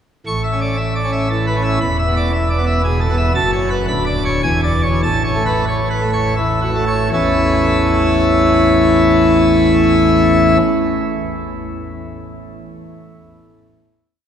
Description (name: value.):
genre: classical, organ toccata.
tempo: 76-119 BPM.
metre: 3/4.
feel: straight.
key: A major.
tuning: A4 = 440 Hz.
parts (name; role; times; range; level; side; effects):
pipe organ, plenum; solo; 0.3-10.6 s; D1 to C#6; -13 LUFS; equal; none.
room: wet cathedral reverb, RT60 5.8 s.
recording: heard from further back in the room.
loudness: -13 LUFS.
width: side -8 dB against mid.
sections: 0.3-7.1 A section; 7.1-11.8 final chord.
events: slowing down 2.6-7.1.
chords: 0.3 A; 1.8 E; 3.3 F#m; 3.9 Bm/D; 4.4 E7; 5.0 A.